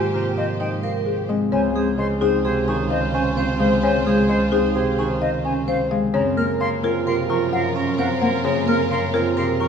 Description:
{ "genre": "classical, minimalist pattern music", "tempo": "130 BPM", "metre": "5/4", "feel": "straight", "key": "Db major", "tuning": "A4 = 437 Hz", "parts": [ { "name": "folk marimba with medium mallets", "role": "melody", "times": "0.0-9.7 s", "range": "G4 to Bb5", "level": "-26 LUFS", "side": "left 7 dB", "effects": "none" }, { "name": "bright clarinet", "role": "second line", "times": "0.0-9.7 s", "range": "Bb4 to C5", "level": "-29 LUFS", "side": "right 4 dB", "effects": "none" }, { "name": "Celtic harp", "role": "accompaniment", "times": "0.0-9.7 s", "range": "C3 to C4", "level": "-23 LUFS", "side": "left 1 dB", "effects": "none" }, { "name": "rich studio string section", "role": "sustained chords", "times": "0.0-9.7 s", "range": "F4 to C5", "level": "-31 LUFS", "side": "left 2 dB", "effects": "none" }, { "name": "warm double bass", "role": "bass", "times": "0.0-9.7 s", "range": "Db2 to Ab2", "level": "-27 LUFS", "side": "right 3 dB", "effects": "none" }, { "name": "silver concert flute", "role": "arpeggios", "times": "0.1-9.7 s", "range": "Eb5 to F6", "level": "-30 LUFS", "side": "left 2 dB", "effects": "none" }, { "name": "vibraphone with medium hard mallets", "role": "arpeggios", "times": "0.1-9.7 s", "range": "C4 to C5", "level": "-25 LUFS", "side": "right 5 dB", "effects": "none" } ], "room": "wet recital hall reverb, RT60 1.6 s", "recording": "minimal, uncompressed stereo recording", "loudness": "-18 LUFS", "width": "side -7 dB against mid", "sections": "0.0-1.5 A section; 1.5-9.7 B section", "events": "none", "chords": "0.0 Abmaj9; 1.5 Dbmaj7; 6.1 Gbmaj7", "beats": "0.14 0.60 1.06 | 1.52 1.99 2.45 2.91 3.37 | 3.83 4.29 4.75 5.21 5.68 | 6.14 6.60 7.06 7.52 7.99 | 8.45 8.91 9.37" }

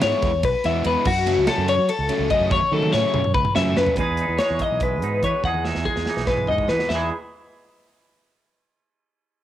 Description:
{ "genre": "math rock and midwest emo", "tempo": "287 BPM (eighths)", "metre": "7/8", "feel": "straight", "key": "E major", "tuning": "A4 = 441 Hz", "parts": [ { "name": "twelve-string electric guitar", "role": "arpeggios", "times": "0.0-7.1 s", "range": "E4 to F#5", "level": "-21 LUFS", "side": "left 4 dB", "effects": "none" }, { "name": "crunchy overdriven guitar", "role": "riff", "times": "0.0-4.0 s", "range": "C#3 to E4", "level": "-26 LUFS", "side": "right 3 dB", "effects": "none" }, { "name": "growling fingered electric bass", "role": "bass", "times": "0.0-7.1 s", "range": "B1 to F#3", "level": "-26 LUFS", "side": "right 2 dB", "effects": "overdrive" }, { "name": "modern studio drum kit", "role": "drums", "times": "0.0-7.0 s", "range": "china cymbal, crash cymbal, hi-hat, kick drum, ride cymbal, snare drum, toms", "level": "-27 LUFS", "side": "right 2 dB", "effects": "none" }, { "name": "twangy electric guitar", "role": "accompaniment", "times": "4.0-7.1 s", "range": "E2 to B4", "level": "-28 LUFS", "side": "right 8 dB", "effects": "none" } ], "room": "light reverb, studio reverb", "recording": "home recording on cassette", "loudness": "-18 LUFS", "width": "side -12 dB against mid", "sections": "0.0-4.0 A section; 4.0-6.9 B section; 6.9-8.4 C section", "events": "drum fill 2.5-4.0, 5.4-6.9", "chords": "0.0 E; 1.1 F#m; 4.0 Emaj7; 6.9 E", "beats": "0.02 0.23 0.43 0.64 0.85 | 1.06 1.27 1.47 1.68 1.89 2.10 2.31 | 2.51 2.72 2.93 3.14 3.35 3.56 3.76 | 3.97 4.18 4.39 4.60 4.81 5.02 5.23 | 5.44 5.65 5.86 6.07 6.28 6.49 6.69 | 6.90 7.11" }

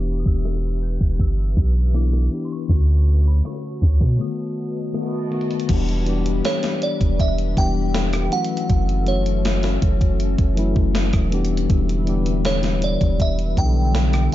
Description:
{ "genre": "contemporary R&B", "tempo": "80 BPM", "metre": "4/4", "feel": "straight", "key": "E dorian", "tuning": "A4 = 436 Hz", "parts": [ { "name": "glassy synth bell", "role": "melody", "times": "0.0-14.3 s", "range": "C#5 to G6", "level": "-26 LUFS", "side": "right 2 dB", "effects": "chorus, ping-pong delay" }, { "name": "mellow tine electric piano", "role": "accompaniment", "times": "0.0-14.3 s", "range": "D3 to A4", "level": "-25 LUFS", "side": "left 5 dB", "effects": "auto-pan" }, { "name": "glassy FM pad", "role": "sustained chords", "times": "0.0-14.3 s", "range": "D3 to B5", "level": "-31 LUFS", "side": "equal", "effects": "ensemble chorus, built-in reverb" }, { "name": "long sustained 808-style bass", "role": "bass", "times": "0.0-14.3 s", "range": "E1 to B2", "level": "-20 LUFS", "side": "equal", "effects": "none" }, { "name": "gated 80s digital drum machine", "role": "drums", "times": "0.1-14.3 s", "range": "crash cymbal, hi-hat, kick drum, rim click, snare drum", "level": "-22 LUFS", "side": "equal", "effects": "gated reverb, gated reverb snare" } ], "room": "little or no reverb", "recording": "dark, warm production, low-pass filter, nothing above 7.6 kHz", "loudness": "-18 LUFS", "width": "side -14 dB against mid", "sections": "0.0-5.7 A section; 5.7-14.3 B section", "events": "filter sweep 0.0-5.7; break 4.2-5.7", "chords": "0.0 Em7; 2.7 Dmaj7; 4.2 B7; 5.7 Em7; 8.3 F#m7; 11.3 Em7", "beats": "0.45 1.20 1.95 | 2.69 3.44 4.20 4.95 | 5.70 6.45 7.20 7.95 | 8.70 9.45 10.20 10.95 | 11.70 12.45 13.20 13.95" }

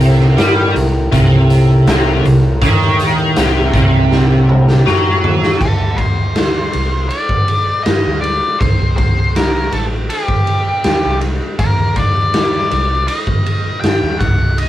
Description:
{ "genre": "psychedelic rock", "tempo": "80 BPM", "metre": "4/4", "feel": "straight", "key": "unclear", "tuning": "A4 = 443 Hz", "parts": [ { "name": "muted studio string section", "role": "sustained chords", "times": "0.0-5.6 s", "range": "C4 to Bb4", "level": "-27 LUFS", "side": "equal", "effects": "none" }, { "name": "biting overdriven guitar", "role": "riff", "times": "0.0-5.6 s", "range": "C3 to G3", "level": "-12 LUFS", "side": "equal", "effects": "rotary speaker" }, { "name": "fingered electric bass", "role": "bass", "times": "0.0-14.7 s", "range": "A1 to G2", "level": "-19 LUFS", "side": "equal", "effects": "none" }, { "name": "hand-pumped harmonium", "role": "drone", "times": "0.0-5.7 s", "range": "A2", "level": "-22 LUFS", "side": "left 1 dB", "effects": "none" }, { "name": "raw garage drum kit", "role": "drums", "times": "0.0-14.7 s", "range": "crash cymbal, hi-hat, kick drum, ride cymbal, snare drum, toms", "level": "-15 LUFS", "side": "equal", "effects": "none" }, { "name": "octave-fuzz lead guitar", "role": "melody", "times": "5.6-14.7 s", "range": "G4 to G5", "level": "-18 LUFS", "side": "left 1 dB", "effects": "distortion" } ], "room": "light reverb", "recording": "rough rehearsal-room recording", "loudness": "-11 LUFS", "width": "side -13 dB against mid", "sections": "0.0-5.6 A section; 5.6-14.7 B section", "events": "drum fill 4.1-5.6", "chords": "0.0 Cm7; 5.6 N.C.; 8.6 C5; 11.6 N.C.", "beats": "0.38 1.13 1.88 | 2.62 3.37 4.12 4.86 | 5.61 6.36 7.11 7.86 | 8.60 9.35 10.10 10.85 | 11.59 12.34 13.09 13.84 | 14.58" }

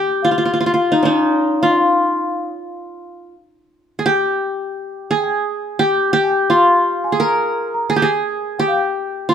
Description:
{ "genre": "arabic", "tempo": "86 BPM", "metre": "3/4", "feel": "straight", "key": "unclear", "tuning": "A4 = 440 Hz", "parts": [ { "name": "qanun", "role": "melody", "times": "0.0-9.3 s", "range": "D4-50c to Bb4", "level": "-16 LUFS", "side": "equal", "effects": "none" }, { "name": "worn celesta", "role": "second line", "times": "0.0-9.3 s", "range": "Eb5 to Bb5", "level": "-23 LUFS", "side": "left 4 dB", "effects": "none" } ], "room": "light reverb", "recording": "band playing live in one room", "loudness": "-15 LUFS", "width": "side -8 dB against mid", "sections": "0.0-9.3 A section", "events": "none", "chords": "none", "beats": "0.23 0.93 | 1.62 2.32 3.02 | 3.72 4.41 5.11 | 5.81 6.50 7.20 | 7.90 8.60 9.29" }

